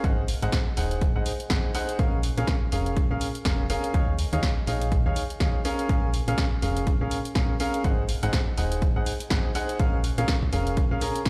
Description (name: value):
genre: piano house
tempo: 123 BPM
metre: 4/4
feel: swing 58% on 16ths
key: Bb minor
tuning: A4 = 440 Hz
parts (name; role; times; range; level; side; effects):
- clear baby grand piano; riff; 0.0-11.2 s; Db4 to Bb5; -32 LUFS; equal; sidechain pumping, digital delay
- solid FM bass; bass; 0.0-11.3 s; Eb1 to Eb2; -30 LUFS; equal; sidechain pumping
- electronic kick drum; drums; 0.0-11.3 s; none; -28 LUFS; equal; none
- punchy analog drum machine; drums; 0.0-11.3 s; hi-hat, snare drum; -36 LUFS; equal; none
room: digital ambience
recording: played on a big sound system in a bare room, stone room reverb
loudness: -25 LUFS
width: mono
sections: 0.0-11.3 A section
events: none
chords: 0.0 Ab7; 2.0 Bbm7; 3.9 Eb9sus4; 5.6 Bbm7; 7.8 Ab7; 9.8 Bbm7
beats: | 0.04 0.53 1.01 1.50 | 1.99 2.48 2.97 3.45 | 3.94 4.43 4.92 5.41 | 5.89 6.38 6.87 7.36 | 7.84 8.33 8.82 9.31 | 9.80 10.28 10.77 11.26